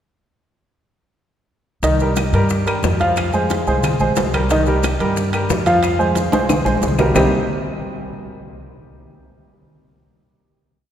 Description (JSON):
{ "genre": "latin, salsa", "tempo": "180 BPM", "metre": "4/4", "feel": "straight", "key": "C minor", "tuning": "A4 = 440 Hz", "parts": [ { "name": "clear concert grand piano", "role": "accompaniment", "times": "1.8-7.3 s", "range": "C3 to F5", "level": "-18 LUFS", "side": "right 1 dB", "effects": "none" }, { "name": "upright bass", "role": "bass", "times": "1.8-7.3 s", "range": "Bb1 to G2", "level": "-21 LUFS", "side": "equal", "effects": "none" }, { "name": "bongos", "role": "percussion", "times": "1.8-7.2 s", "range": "none", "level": "-26 LUFS", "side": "left 6 dB", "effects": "none" }, { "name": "congas", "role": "percussion", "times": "1.8-7.2 s", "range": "none", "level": "-28 LUFS", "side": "left 2 dB", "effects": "none" }, { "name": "maracas", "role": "percussion", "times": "1.8-7.2 s", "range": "none", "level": "-34 LUFS", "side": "right 6 dB", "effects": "none" }, { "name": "timbales", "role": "percussion", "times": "1.8-7.2 s", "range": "none", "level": "-26 LUFS", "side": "right 4 dB", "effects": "none" }, { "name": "claves", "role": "percussion", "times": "2.2-7.2 s", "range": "none", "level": "-33 LUFS", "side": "left 4 dB", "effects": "none" } ], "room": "wet church reverb, RT60 3.3 s", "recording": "recorded in a church or concert hall", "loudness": "-15 LUFS", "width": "side -10 dB against mid", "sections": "1.8-7.2 montuno (vamp); 7.2-8.5 final chord", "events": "drum fill 6.3-7.2", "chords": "1.8 Cm7; 3.2 Fm; 4.5 Cm7; 5.8 Fm; 7.2 Cm7", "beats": "| 1.83 2.17 2.50 2.84 | 3.17 3.50 3.83 4.17 | 4.50 4.83 5.17 5.50 | 5.83 6.16 6.49 6.83 | 7.16" }